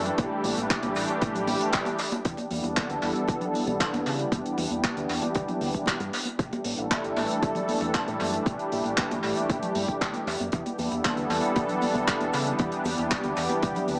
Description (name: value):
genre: nu-disco, nu disco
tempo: 116 BPM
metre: 4/4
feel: straight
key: E minor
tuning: A4 = 440 Hz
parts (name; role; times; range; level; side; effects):
- warm analog pad; accompaniment; 0.0-14.0 s; E3 to A4; -27 LUFS; equal; chorus, sidechain pumping, tape echo
- fingered electric bass with an envelope filter; bass; 0.0-14.0 s; E1 to C#3; -35 LUFS; equal; sidechain pumping
- damped 70s drum kit; drums; 0.1-14.0 s; handclaps, hi-hat; -31 LUFS; equal; small room ambience, tape echo
- egg shaker and congas; percussion; 0.1-14.0 s; none; -34 LUFS; equal; tape echo
- electronic kick drum; drums; 0.2-13.7 s; none; -29 LUFS; equal; small room ambience
room: moderate spring reverb, RT60 1.4 s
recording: echo-heavy mix, small speaker sound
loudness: -24 LUFS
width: side -37 dB against mid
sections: 0.0-2.2 A section; 2.2-14.0 B section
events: drop 0.0-2.2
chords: 0.0 A7sus4; 2.2 Em7; 6.4 A7sus4; 10.5 Em7